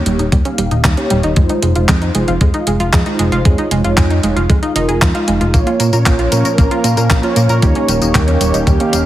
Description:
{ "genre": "italo disco", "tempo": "115 BPM", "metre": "4/4", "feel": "straight", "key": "Bb dorian", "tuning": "A4 = 439 Hz", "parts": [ { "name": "mellow synth brass", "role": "stabs", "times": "0.0-9.1 s", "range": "Ab3 to F5", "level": "-18 LUFS", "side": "right 1 dB", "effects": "chorus, digital delay" }, { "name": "chorused synth bass", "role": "bass", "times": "0.0-9.0 s", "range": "Eb1 to Bb2", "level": "-16 LUFS", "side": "equal", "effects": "none" }, { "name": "analog pluck", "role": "arpeggios", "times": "0.1-9.0 s", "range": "G3 to Bb4", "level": "-19 LUFS", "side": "right 2 dB", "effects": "chorus, digital delay" }, { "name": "clean 12-bit digital drum machine", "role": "drums", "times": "0.1-9.0 s", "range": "handclaps, hi-hat, tambourine", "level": "-20 LUFS", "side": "equal", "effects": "studio reverb" }, { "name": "electronic kick drum", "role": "drums", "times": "0.3-8.8 s", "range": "none", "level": "-14 LUFS", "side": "equal", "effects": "studio reverb" }, { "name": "lush unison pad", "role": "sustained chords", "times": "5.9-9.1 s", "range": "Eb3 to Bb4", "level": "-20 LUFS", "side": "equal", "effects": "chorus" } ], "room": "light reverb", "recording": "heavily compressed radio sound", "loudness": "-11 LUFS", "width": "side -13 dB against mid", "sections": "0.0-9.1 A section", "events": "filter sweep on analog polysynth 0.0-9.1", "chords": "0.0 Eb7; 1.4 Fm7; 3.5 Dbadd9/F; 5.5 Bbm; 7.6 Eb7", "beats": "0.32 0.84 | 1.37 1.89 2.41 2.93 | 3.45 3.98 4.50 5.02 | 5.54 6.06 6.58 7.11 | 7.63 8.15 8.67" }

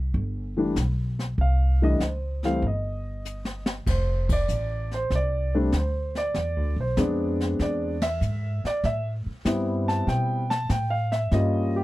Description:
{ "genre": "jazz piano trio", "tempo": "97 BPM", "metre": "4/4", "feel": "swing 69% on 8ths", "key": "unclear", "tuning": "A4 = 440 Hz", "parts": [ { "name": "upright bass", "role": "bass", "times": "0.0-11.8 s", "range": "F1 to B2", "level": "-26 LUFS", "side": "equal", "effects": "none" }, { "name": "jazz brush drum kit", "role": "drums", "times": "0.1-11.8 s", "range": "brushed snare drum, crash cymbal, hi-hat, kick drum, ride cymbal, snare drum", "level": "-30 LUFS", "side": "equal", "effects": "none" }, { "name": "warm concert grand piano", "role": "melody", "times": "0.6-11.8 s", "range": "E3 to A5", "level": "-26 LUFS", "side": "equal", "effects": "none" } ], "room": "little or no reverb", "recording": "dry, close 1970s-style studio recording", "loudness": "-23 LUFS", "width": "side -17 dB against mid", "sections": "0.0-3.9 A section; 3.9-11.8 B section", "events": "drum fill 3.3-3.9; band accent 4.2-4.5, 7.9-8.2", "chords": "0.0 C5; 3.9 F6; 6.4 E7b13; 8.8 Am9; 11.3 Gm7b5", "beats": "0.15 0.77 | 1.39 2.01 2.63 3.25 | 3.87 4.49 5.11 5.74 | 6.36 6.98 7.60 8.22 | 8.84 9.46 10.08 10.70 | 11.32" }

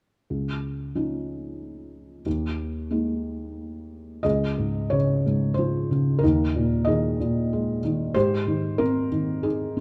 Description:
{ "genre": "classical, lyrical solo piano", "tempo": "92 BPM", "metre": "3/4", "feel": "rubato", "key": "unclear", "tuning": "A4 = 441 Hz", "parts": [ { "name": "felt-muted upright piano", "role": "solo", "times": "0.3-9.8 s", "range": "Db2 to Eb5", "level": "-25 LUFS", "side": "equal", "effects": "none" } ], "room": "moderate recital hall reverb, RT60 1.6 s", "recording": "dark, warm production", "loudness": "-25 LUFS", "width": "mono", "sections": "0.3-4.2 A section; 4.2-9.8 B section", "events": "none", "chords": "0.3 Dbadd9; 2.3 Ebsus4; 4.2 Dbadd9; 6.2 Ebsus4; 8.2 Abmaj7", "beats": "| 0.30 0.96 1.61 | 2.26 2.91 3.57 | 4.25 4.92 5.58 | 6.22 6.87 7.52 | 8.15 8.79 9.44" }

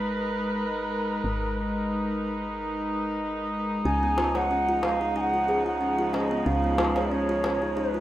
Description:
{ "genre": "organic downtempo", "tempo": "92 BPM", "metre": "4/4", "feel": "swing 54% on 16ths", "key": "Db mixolydian", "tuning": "A4 = 439 Hz", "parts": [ { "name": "rich chamber string section", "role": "sustained chords", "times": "0.0-8.0 s", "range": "Db3 to Cb5", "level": "-28 LUFS", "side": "equal", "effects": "plate reverb" }, { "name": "woody FM bass", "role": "bass", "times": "0.0-8.0 s", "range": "Ab1 to Db2", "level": "-34 LUFS", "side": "equal", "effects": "none" }, { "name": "reedy bansuri", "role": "melody", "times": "3.8-8.0 s", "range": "Cb5 to Ab5", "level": "-27 LUFS", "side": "right 1 dB", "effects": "plate reverb, digital delay" }, { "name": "buzzing kalimba", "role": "arpeggios", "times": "3.9-8.0 s", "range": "Cb4 to Db5", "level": "-30 LUFS", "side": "equal", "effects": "plate reverb, digital delay" }, { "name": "darbuka", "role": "percussion", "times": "4.2-7.6 s", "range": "none", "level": "-30 LUFS", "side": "left 1 dB", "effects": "none" } ], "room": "wet studio reverb, RT60 0.6 s", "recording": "rough home demo mix", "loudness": "-24 LUFS", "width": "side -13 dB against mid", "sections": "0.0-8.0 A section", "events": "none", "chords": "0.0 Abm; 3.9 Db", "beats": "0.59 | 1.24 1.89 2.55 3.20 | 3.85 4.50 5.16 5.81 | 6.46 7.11 7.76" }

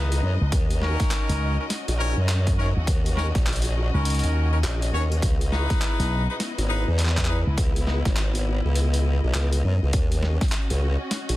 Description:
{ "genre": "glitch hop", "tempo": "102 BPM", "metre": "4/4", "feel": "swing 62% on 16ths", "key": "C# dorian", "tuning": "A4 = 441 Hz", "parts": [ { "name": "clear horn section", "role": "stabs", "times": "0.0-7.4 s", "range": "C#4 to C#5", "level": "-30 LUFS", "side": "left 2 dB", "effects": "sidechain pumping, digital delay" }, { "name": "formant-sweep wobble bass", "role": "bass", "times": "0.0-11.4 s", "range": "G#1 to F#2", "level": "-22 LUFS", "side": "equal", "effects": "chorus, tube saturation" }, { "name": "dark studio string section", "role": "texture", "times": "0.0-11.4 s", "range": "E3 to D#5", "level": "-34 LUFS", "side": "left 2 dB", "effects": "sidechain pumping" }, { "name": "boom bap sampler-style drum kit", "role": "drums", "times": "0.1-11.4 s", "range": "handclaps, hi-hat, snare drum", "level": "-30 LUFS", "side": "equal", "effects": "overdrive, small room ambience" }, { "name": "slap bass with an envelope filter", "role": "bass", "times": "0.4-7.6 s", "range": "B1 to D#2", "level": "-22 LUFS", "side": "equal", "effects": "tube saturation" }, { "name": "electronic kick drum", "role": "drums", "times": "0.5-10.5 s", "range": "none", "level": "-24 LUFS", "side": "equal", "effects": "overdrive, small room ambience" } ], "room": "little or no reverb", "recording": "dense, heavily limited modern master", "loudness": "-21 LUFS", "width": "side -16 dB against mid", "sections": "0.0-11.4 A section", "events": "none", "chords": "0.0 C#m9; 0.5 D#m7; 5.2 C#m9; 9.9 D#m7", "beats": "| 0.52 1.11 1.70 2.29 | 2.88 3.46 4.05 4.64 | 5.23 5.82 6.41 6.99 | 7.58 8.17 8.76 9.35 | 9.94 10.52 11.11" }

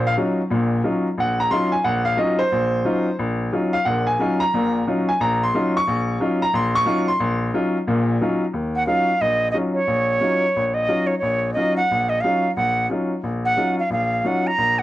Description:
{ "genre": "jazz", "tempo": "179 BPM", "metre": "4/4", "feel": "swing 64% on 8ths", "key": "Eb dorian", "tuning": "A4 = 440 Hz", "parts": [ { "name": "clear baby grand piano", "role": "accompaniment", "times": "0.0-14.8 s", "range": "Bb1 to Db6", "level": "-20 LUFS", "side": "left 1 dB", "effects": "cassette tape" }, { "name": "breathy bright concert flute", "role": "melody", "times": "8.8-14.8 s", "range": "Db5 to Bb5", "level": "-19 LUFS", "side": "right 1 dB", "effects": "cassette tape, plate reverb" } ], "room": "moderate studio reverb, RT60 0.5 s", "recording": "home recording on cassette", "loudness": "-18 LUFS", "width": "side -14 dB against mid", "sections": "0.0-8.5 A section; 8.5-14.8 B section", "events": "none", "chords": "0.0 Ebm9", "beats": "0.17 | 0.51 0.84 1.18 1.51 | 1.84 2.18 2.51 2.85 | 3.18 3.52 3.85 4.19 | 4.52 4.86 5.19 5.53 | 5.86 6.19 6.53 6.86 | 7.20 7.53 7.87 8.20 | 8.53 8.87 9.20 9.54 | 9.87 10.21 10.54 10.88 | 11.21 11.55 11.89 12.22 | 12.56 12.89 13.23 13.56 | 13.90 14.23 14.57" }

